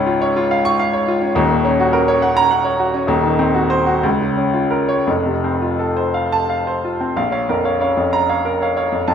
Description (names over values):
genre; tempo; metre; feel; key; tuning
classical, romantic character piece for solo piano; 55-71 BPM (dotted quarters); 6/8; rubato; Bb minor; A4 = 441 Hz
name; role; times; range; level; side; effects
clear baby grand piano; solo; 0.0-9.1 s; Eb1 to Db6; -15 LUFS; equal; none
room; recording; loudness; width
moderate recital hall reverb, RT60 1.5 s; minimal, uncompressed stereo recording; -15 LUFS; side -8 dB against mid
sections
0.0-7.2 A section; 7.2-9.1 B section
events
none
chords
0.0 Db; 1.4 Ebm7; 3.1 Cdim/Eb; 4.0 Bbm/Db; 5.1 F; 7.2 Bbm